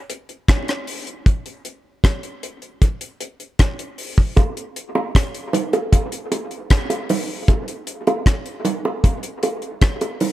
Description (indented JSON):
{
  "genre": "reggae",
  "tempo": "77 BPM",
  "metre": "4/4",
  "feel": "straight",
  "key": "none",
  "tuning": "none",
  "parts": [
    { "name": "deep reggae drum kit", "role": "drums", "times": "0.1-10.3 s", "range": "hi-hat, kick drum, rim click", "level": "-17 LUFS", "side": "equal", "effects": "none" },
    { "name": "bongos", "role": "percussion", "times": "4.4-10.3 s", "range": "none", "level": "-22 LUFS", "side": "right 3 dB", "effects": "dub echo" }
  ],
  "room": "little or no reverb",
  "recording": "echo-heavy mix",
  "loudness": "-18 LUFS",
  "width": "side -15 dB against mid",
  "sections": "0.0-10.3 A section",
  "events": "break 0.0-4.4",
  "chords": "none"
}